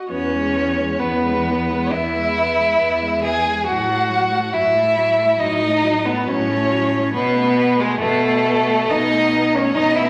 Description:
classical, slow romantic movement for string quartet; 69 BPM; 4/4; rubato; E major; A4 = 440 Hz
warm viola; accompaniment; 0.0-10.1 s; F#3 to F#4; -30 LUFS; equal
rich violin; melody; 0.1-10.1 s; G#4 to G#5; -24 LUFS; equal
rich violin; second line; 0.1-10.1 s; G#3 to G#4; -21 LUFS; equal
rich cello; bass; 0.1-10.1 s; E2 to B2; -26 LUFS; equal
wet recital hall reverb, RT60 1.4 s; vinyl crackle; -18 LUFS; mono
0.1-10.1 A section
0.1 E; 3.7 F#m/A; 7.1 B7

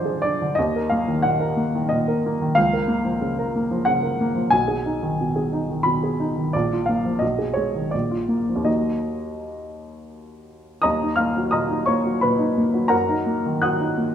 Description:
classical, romantic character piece for solo piano; 80-93 BPM; 3/4; rubato; Eb minor; A4 = 440 Hz
warm upright piano; solo; 0.0-14.1 s; Bb1 to Gb6; -20 LUFS; equal
wet recital hall reverb, RT60 1.4 s; minimal, uncompressed stereo recording; -19 LUFS; side -9 dB against mid
0.0-10.8 A section; 10.8-14.1 A section
0.0 Ddim/F; 0.6 Ebm; 2.6 Bbm/Db; 4.5 Abm/Cb; 6.5 Bb; 7.2 Abm/Cb; 7.9 Bb; 8.7 Ebm; 12.9 Ebm/Gb

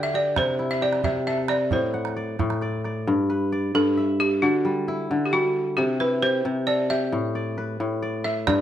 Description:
west african traditional, West African string and xylophone music; 89 BPM (dotted quarters); 12/8; straight; G major; A4 = 440 Hz
balafon; melody; 0.0-8.6 s; F#4 to E5; -24 LUFS; right 1 dB
kora; arpeggios; 0.0-8.6 s; G2 to F#5; -24 LUFS; left 2 dB
calabash; percussion; 0.4-2.9, 8.5-8.6 s; -30 LUFS; right 7 dB
light reverb; close, detailed microphones; -21 LUFS; side -10 dB against mid
0.0-3.1 A section; 3.1-8.6 B section
balafon solo 3.1-8.6
0.4 C; 1.7 Am; 3.1 G; 4.4 D; 5.8 C; 7.1 A5

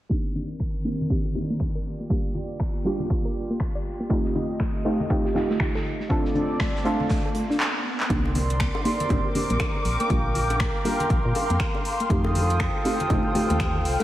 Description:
deep house; 120 BPM; 4/4; swing 60% on 16ths; C dorian; A4 = 441 Hz
warm analog pad; sustained chords; 0.1-14.0 s; Eb3 to Eb6; -30 LUFS; right 1 dB; chorus, sidechain pumping
soft round pluck; arpeggios; 0.1-14.0 s; A3 to D5; -33 LUFS; left 1 dB; chorus, sidechain pumping, analog delay
deep mellow chord stab; stabs; 0.1-14.0 s; G3 to A4; -28 LUFS; right 1 dB; chorus, sidechain pumping, analog delay
electronic kick drum; drums; 0.1-13.7 s; -27 LUFS; equal; overdrive, small room ambience
congas and bongos; percussion; 0.4-14.0 s; -34 LUFS; left 1 dB
deep house drum kit; drums; 0.6-14.0 s; finger snaps, handclaps, hi-hat; -31 LUFS; equal; overdrive, small room ambience
gated 80s drum kit; drums; 4.1-7.6 s; hi-hat, snare drum; -43 LUFS; right 1 dB; high-pass filter on hats, small room ambience, high-pass filter on snare, high-pass filter on room
riser; sound effects; 6.0-8.1 s; -37 LUFS; equal
organ-like FM bass; bass; 8.1-14.0 s; F1 to Bb2; -26 LUFS; equal; sidechain pumping
muted studio string section; texture; 8.1-14.0 s; C4 to D6; -31 LUFS; left 1 dB; sidechain pumping
moderate lush hall reverb, RT60 2.0 s, small room ambience; dreamy mix soaked in reverb, vinyl crackle, low-pass filter; -22 LUFS; side -14 dB against mid
0.1-8.1 A section; 8.1-14.0 B section
filter sweep on synth stab 0.1-8.1; filter sweep on analog synth pad 0.1-8.1; filter sweep on synth arpeggio sound 0.1-8.1; filter sweep 0.1-8.1; riser 6.0-8.1; drum fill 7.6-8.1
0.1 Cm9; 1.9 Bb6; 4.1 F9; 6.1 Dm7; 8.1 Cm9; 9.9 Bb6; 12.1 F9

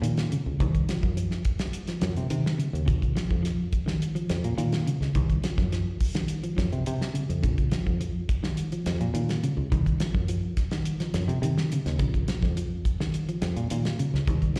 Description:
afrobeat; 105 BPM; 4/4; straight; Bb minor; A4 = 439 Hz
electric guitar at the edge of break-up; arpeggios; 0.0-14.6 s; Db3 to F3; -32 LUFS; equal; vibrato effect, slapback echo
fingered electric bass; bass; 0.0-14.5 s; Bb1 to C3; -30 LUFS; equal
cloth-damped thuddy drum kit; drums; 0.0-14.6 s; hi-hat, kick drum, snare drum; -31 LUFS; equal
light reverb; live gig heard through the venue's PA, recital hall reverb; -27 LUFS; mono
0.0-14.6 A section
0.0 Bbm; 0.6 Cdim; 2.9 Bbm; 5.2 Cdim; 7.4 Bbm; 9.7 Cdim; 12.0 Bbm

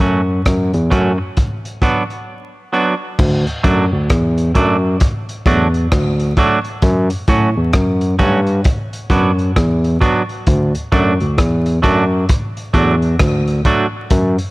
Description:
roots reggae; 66 BPM; 4/4; swing 62% on 16ths; D major; A4 = 440 Hz
semi-hollow electric guitar; accompaniment; 0.0-13.9 s; F#3 to F#4; -19 LUFS; right 2 dB
barky tine electric piano; bass; 0.0-14.4 s; D2 to A2; -15 LUFS; equal; overdrive
crunchy breakbeat drum kit; drums; 0.0-14.5 s; crash cymbal, hi-hat, kick drum, rim click; -18 LUFS; equal; vintage 12-bit sampler grit
studio ambience; vinyl crackle; -13 LUFS; side -21 dB against mid
0.0-3.2 A section; 3.2-14.5 B section
break 2.3-3.2
0.0 F#m; 1.4 Bm; 3.2 D; 6.8 F#m; 8.7 Bm; 10.5 D

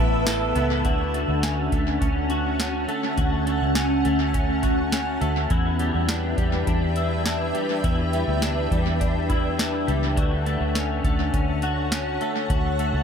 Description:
dream pop; 103 BPM; 4/4; straight; D major; A4 = 440 Hz
soft octave-layered synth lead; melody; 0.0-0.5 s; barely audible
electric guitar through a small old amp; accompaniment; 0.0-0.9 s; E3 to A4; -31 LUFS; right 3 dB; tremolo, lush chorus, analog delay
granular cloud pad; sustained chords; 0.0-13.0 s; C#4 to E6; -27 LUFS; right 1 dB; built-in reverb
twelve-string electric guitar; arpeggios; 0.0-13.0 s; E2 to A4; -26 LUFS; left 3 dB; ensemble chorus, analog delay
vintage muted fingered electric bass; bass; 0.0-13.0 s; A1 to E2; -26 LUFS; equal
booming analog drum machine; drums; 0.3-12.9 s; hi-hat, kick drum, snare drum, tambourine; -26 LUFS; equal; analog delay
light reverb; echo-heavy mix; -21 LUFS; side -7 dB against mid
0.8-13.0 A section
0.0 Asus2; 0.8 Dmaj7; 5.5 Em7; 10.2 Dmaj7

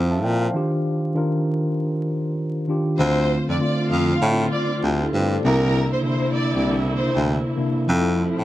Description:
hip hop; 98 BPM; 4/4; swing 60% on 16ths; D minor; A4 = 440 Hz
mellow tine electric piano; accompaniment; 0.0-8.4 s; C3 to A5; -22 LUFS; equal; slow stereo tremolo, cassette tape, high-pass filter, low-pass filter
breathy baritone saxophone; bass; 0.0-8.4 s; C2 to Bb2; -21 LUFS; equal
warm studio violin section; melody; 3.0-7.1 s; Bb4 to F5; -26 LUFS; equal; high-pass filter, low-pass filter
dark studio string section; sustained chords; 3.0-8.4 s; D3 to F4; -29 LUFS; right 1 dB; stereo widening, high-pass filter, low-pass filter
light reverb, studio reverb; vinyl crackle; -19 LUFS; side -14 dB against mid
0.0-3.0 A section; 3.0-8.4 B section
break 0.5-3.0
0.0 Fmaj7; 0.5 Ebmaj9; 3.0 Dm7; 5.4 C9; 7.9 Fmaj7

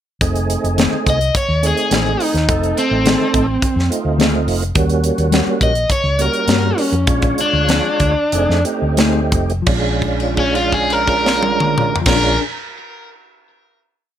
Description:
straight-eighth soul blues; 85-106 BPM; 4/4; straight; A4 = 441 Hz
tonewheel organ; accompaniment; 0.2-12.4 s; G3 to C#5; -20 LUFS; right 4 dB; slow rotary speaker, overdrive, chorus vibrato
hollow-body short-scale fingered electric bass; bass; 0.2-12.4 s; F1 to G2; -20 LUFS; equal
tight funk drum kit; drums; 0.2-12.2 s; crash cymbal, hi-hat, kick drum, snare drum, toms; -19 LUFS; equal
mellow electric guitar; stabs; 0.8-12.4 s; Eb3 to G#4; -21 LUFS; left 5 dB; harmonic tremolo
crunchy overdriven guitar; melody; 1.1-12.4 s; C4 to Eb5; -18 LUFS; left 1 dB; spring reverb
light reverb; -14 LUFS; side -10 dB against mid
0.2-9.7 head; 9.7-12.5 final chord
slowing down 4.8-9.7; held note 9.7-12.1
0.2 F7#9; 4.8 Eb7#9; 7.1 Bb7#9; 8.3 F7#9; 9.7 Bb7#9

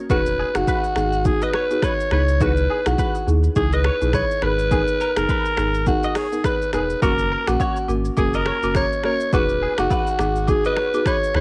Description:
afrobeats; 104 BPM; 4/4; swing 58% on 16ths; A4 = 440 Hz
breathy alto saxophone; melody; 0.1-11.4 s; F#4 to C#5; -24 LUFS; equal
folk marimba with medium mallets; accompaniment; 0.1-11.4 s; A#3 to A#4; -28 LUFS; equal; cassette tape
direct-recorded clean electric guitar; riff; 0.1-11.4 s; F#4 to D#5; -34 LUFS; equal; ensemble chorus, cassette tape, analog delay
sub bass with octave; bass; 0.1-11.4 s; E1 to D#2; -25 LUFS; equal
deep house drum kit; drums; 0.1-11.4 s; finger snaps, hi-hat, kick drum, rim click, shaker; -26 LUFS; equal; overdrive
agogo bells and woodblock; percussion; 7.0-11.1 s; -36 LUFS; equal
little or no reverb; home recording on cassette; -20 LUFS; mono
0.0-11.4 A section
0.1 Emaj7; 2.1 C#m7; 4.4 G#madd9; 7.0 F#; 9.3 Emaj7

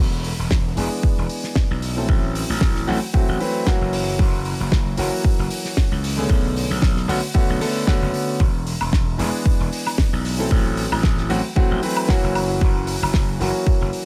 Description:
nu-disco, nu disco; 114 BPM; 4/4; swing 56% on 16ths; E mixolydian; A4 = 441 Hz
gritty slap bass; bass; 0.0-13.9 s; E1 to C#2; -26 LUFS; equal; overdrive, tube saturation
damped 70s drum kit; drums; 0.2-14.0 s; hi-hat, snare drum, woodblock; -30 LUFS; equal; studio reverb
electronic kick drum; drums; 0.5-13.8 s; -21 LUFS; equal; studio reverb
clear concert grand piano; accompaniment; 0.8-14.1 s; D3 to B4; -27 LUFS; equal; low-pass filter, digital delay
little or no reverb; -20 LUFS; mono
0.0-14.1 A section
filter sweep on grand piano 0.0-14.1
0.0 E7; 2.1 Am6; 3.9 F#7; 6.3 Bm9; 8.4 E7; 10.5 Am6; 12.4 F#7

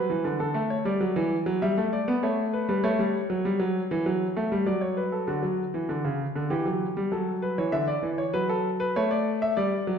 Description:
classical, baroque-style two-part invention for grand piano; 98 BPM; 4/4; straight; A4 = 441 Hz
warm concert grand piano; solo; 0.0-10.0 s; C#3 to E5; -24 LUFS; equal
wet recital hall reverb, RT60 1.3 s; dark, warm production; -24 LUFS; side -7 dB against mid
0.0-5.3 A section; 5.3-10.0 B section
0.4 D; 1.6 Em7/G; 2.8 A7; 4.1 D/F#; 5.3 D; 6.5 C#dim/E; 7.7 Bm/D; 9.0 A

